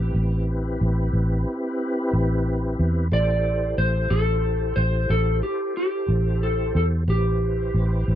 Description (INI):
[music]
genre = blues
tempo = 61 BPM (dotted quarters)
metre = 12/8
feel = straight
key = A minor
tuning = A4 = 441 Hz
[part]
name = electric slide guitar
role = melody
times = 0.0-8.2 s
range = G4 to D5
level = -25 LUFS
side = equal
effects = none
[part]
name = mellow tonewheel organ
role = sustained chords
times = 0.0-8.2 s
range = C4 to C5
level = -29 LUFS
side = left 1 dB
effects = chorus vibrato, slow rotary speaker
[part]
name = vintage muted fingered electric bass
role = bass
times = 0.0-8.2 s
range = A1 to E2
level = -21 LUFS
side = equal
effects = none
[sound]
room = little or no reverb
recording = dry, close 1970s-style studio recording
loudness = -20 LUFS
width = side -11 dB against mid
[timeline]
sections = 0.0-8.2 A section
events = none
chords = 0.0 Am9